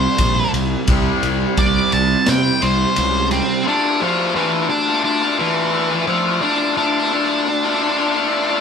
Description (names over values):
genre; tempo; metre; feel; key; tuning
quiet-loud alternative rock; 87 BPM; 4/4; straight; D minor; A4 = 440 Hz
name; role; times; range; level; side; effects
octave-fuzz lead guitar; melody; 0.0-8.6 s; E3 to A5; -18 LUFS; equal; distortion
overdriven semi-hollow guitar; riff; 0.0-3.6 s; C3 to C4; -22 LUFS; right 11 dB; none
raw garage guitar; riff; 0.0-8.6 s; D2 to F4; -20 LUFS; left 4 dB; overdrive
fuzz fingered electric bass; bass; 0.0-3.4 s; Bb1 to C3; -21 LUFS; equal; overdrive
raw garage drum kit; drums; 0.2-3.5 s; kick drum, ride cymbal, snare drum; -24 LUFS; equal; none
room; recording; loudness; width
moderate studio reverb, RT60 0.7 s; band playing live in one room; -15 LUFS; side -6 dB against mid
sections
0.0-3.7 A section; 3.7-8.6 B section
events
half time 0.0-3.7; lead electric guitar solo 0.0-3.7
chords
0.0 C5; 3.7 Dm